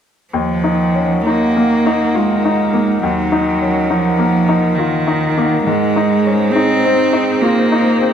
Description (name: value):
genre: neoclassical piano and strings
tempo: 68 BPM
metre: 3/4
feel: rubato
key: Eb dorian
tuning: A4 = 440 Hz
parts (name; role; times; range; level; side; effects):
- rich cello; second line; 0.3-8.1 s; Eb3 to C4; -15 LUFS; right 3 dB; tape echo
- bright upright piano; accompaniment; 0.3-8.1 s; Eb2 to F4; -17 LUFS; left 4 dB; none
- warbly tape-like pad; sustained chords; 0.7-8.1 s; Eb4 to Gb5; -21 LUFS; left 1 dB; chorus, built-in reverb
room: moderate recital hall reverb, RT60 1.3 s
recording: close, detailed microphones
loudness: -12 LUFS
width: side -8 dB against mid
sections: 0.3-8.1 A section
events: none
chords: 0.3 Ebmadd9; 5.7 Ab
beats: | 0.33 1.25 2.14 | 3.02 3.89 4.76 | 5.66 6.54 7.42